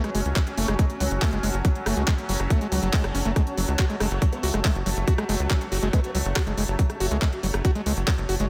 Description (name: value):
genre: psychedelic trance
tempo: 140 BPM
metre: 4/4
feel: straight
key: F# minor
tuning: A4 = 445 Hz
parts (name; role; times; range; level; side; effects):
- formant-sweep wobble bass; second line; 0.0, 4.3-6.1 s; B3 to C#4; -42 LUFS; equal; none
- bubbling stepped-filter texture; sustained chords; 0.0-8.5 s; F#3 to C#4; -36 LUFS; equal; chorus, built-in reverb, sidechain pumping
- overdriven acid bass; riff; 0.0-8.5 s; F#3 to F#4; -32 LUFS; equal; distortion, sidechain pumping, dub echo
- garage drum kit; drums; 0.0-8.5 s; handclaps, hi-hat, rim click; -33 LUFS; equal; none
- granular cloud pad; texture; 0.1-8.5 s; F#4 to A5; -37 LUFS; equal; built-in reverb, sidechain pumping
- tight sequencer bass; bass; 0.1-8.5 s; F#1 to C#2; -29 LUFS; equal; tube saturation
- electronic kick drum; drums; 0.4-8.2 s; none; -25 LUFS; equal; none
room: digital ambience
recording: none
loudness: -24 LUFS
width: mono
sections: 0.0-8.5 A section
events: none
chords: 0.0 F#5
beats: 0.36 0.79 1.22 | 1.65 2.08 2.50 2.93 | 3.36 3.79 4.22 4.65 | 5.08 5.50 5.93 6.36 | 6.79 7.22 7.65 8.07